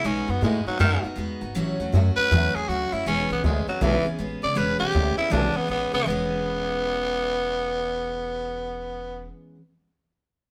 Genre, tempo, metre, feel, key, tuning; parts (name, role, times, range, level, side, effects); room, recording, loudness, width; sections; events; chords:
rockabilly; 160 BPM; 4/4; swing 64% on 8ths; E major; A4 = 440 Hz
growling tenor saxophone; melody; 0.0-9.3 s; D#3 to D5; -27 LUFS; equal
picked steel-string acoustic guitar; accompaniment; 0.0-9.6 s; A2 to G#4; -32 LUFS; equal
upright bass; bass; 0.0-9.3 s; E1 to A2; -29 LUFS; equal
moderate studio reverb, RT60 0.9 s; band playing live in one room; -24 LUFS; mono
0.0-6.1 A section; 6.1-9.1 B section
0.1 B6; 1.6 A6; 3.1 E6